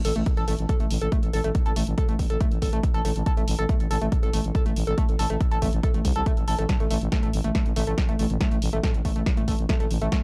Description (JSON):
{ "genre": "driving peak-time techno", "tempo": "140 BPM", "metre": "4/4", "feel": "straight", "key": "unclear", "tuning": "A4 = 440 Hz", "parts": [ { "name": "overdriven synth lead", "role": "riff", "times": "0.0-10.2 s", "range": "A3 to A4", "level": "-31 LUFS", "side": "equal", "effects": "distortion, subtle chorus, sidechain pumping, analog delay" }, { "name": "punchy analog drum machine", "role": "drums", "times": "0.0-10.2 s", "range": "hi-hat, snare drum, toms", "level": "-36 LUFS", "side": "equal", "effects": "sidechain pumping on hats, sidechain pumping on toms, sidechain pumping on cymbals" }, { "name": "growling FM bass", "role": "bass", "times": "0.1-10.1 s", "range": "A1 to C2", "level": "-29 LUFS", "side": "equal", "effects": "sidechain pumping" }, { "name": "electronic kick drum", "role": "drums", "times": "0.3-10.2 s", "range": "none", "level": "-26 LUFS", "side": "equal", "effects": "none" } ], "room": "digital ambience", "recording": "dry, gritty hardware recording, transformer saturation", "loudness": "-24 LUFS", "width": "mono", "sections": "0.0-10.2 A section", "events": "none", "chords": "none" }